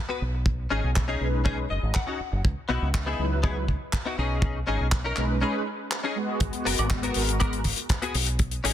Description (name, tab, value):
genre	nu-disco, nu disco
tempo	121 BPM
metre	4/4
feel	straight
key	B major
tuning	A4 = 443 Hz
part	direct-recorded clean electric guitar	riff	0.1-8.7 s	B3 to F#5	-30 LUFS	left 3 dB	ensemble chorus, dub echo
part	fingered electric bass with an envelope filter	bass	0.2-8.7 s	F#1 to C#2	-28 LUFS	equal	tube saturation
part	kick drum	drums	0.5-8.5 s	none	-26 LUFS	equal	none
part	damped 70s drum kit	drums	1.0-8.7 s	handclaps, hi-hat, woodblock	-31 LUFS	left 2 dB	soft clipping on snare
part	mellow synth brass	accompaniment	1.2-7.6 s	F#3 to B4	-31 LUFS	equal	chorus, dub echo
room	light reverb, small room ambience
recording	dense, heavily limited modern master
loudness	-24 LUFS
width	side -11 dB against mid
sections	0.0-8.7 A section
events	clean electric guitar fill 1.5-2.4; break 5.4-6.4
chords	0.5 B69; 2.4 C#m11; 4.2 B69; 6.4 G#m9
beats	| 0.46 0.96 1.45 1.95 | 2.44 2.94 3.44 3.93 | 4.43 4.92 5.42 5.92 | 6.41 6.91 7.40 7.90 | 8.40